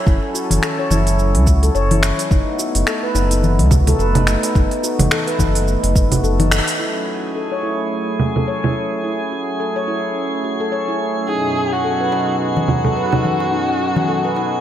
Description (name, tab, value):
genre	organic downtempo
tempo	107 BPM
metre	4/4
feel	swing 58% on 16ths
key	F# dorian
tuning	A4 = 441 Hz
part	warm analog pad	sustained chords	0.0-14.6 s	F#2 to G#5	-24 LUFS	right 1 dB	chorus, sidechain pumping
part	handpan	arpeggios	0.0-14.5 s	D#4 to C#5	-22 LUFS	left 1 dB	low-pass filter, digital delay
part	round analog bass	bass	0.1-6.6 s	F#1 to C#2	-16 LUFS	equal	sidechain pumping
part	afro-pop drum kit	drums	0.1-8.7, 12.7-13.2 s	congas, finger snaps, hi-hat, shaker	-21 LUFS	right 2 dB	low-pass filter on hats, small room reverb, low-pass filter on perc, low-pass filter on snare
part	electronic kick drum	drums	0.1-6.1 s	none	-16 LUFS	equal	small room reverb
part	darbuka	percussion	0.2-6.8, 12.1-14.5 s	none	-24 LUFS	left 3 dB	none
part	drifting glass-harmonics texture	texture	7.1-14.6 s	G#4 to G#5	-27 LUFS	right 1 dB	chorus, built-in reverb
part	dark kamancheh	melody	11.3-14.6 s	F#4 to G#4	-20 LUFS	equal	digital delay
room	moderate lush hall reverb, RT60 2.5 s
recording	bright 1980s-style digital production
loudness	-15 LUFS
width	side -11 dB against mid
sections	0.0-6.8 A section; 6.8-14.6 B section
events	band accent 6.5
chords	0.0 F#m7; 2.3 B7/F#; 6.8 F#m7; 11.3 B/F#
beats	| 0.07 0.63 1.19 1.75 | 2.31 2.87 3.43 3.99 | 4.55 5.11 5.67 6.24 | 6.80 7.36 7.92 8.48 | 9.04 9.60 10.16 10.72 | 11.28 11.84 12.40 12.96 | 13.53 14.09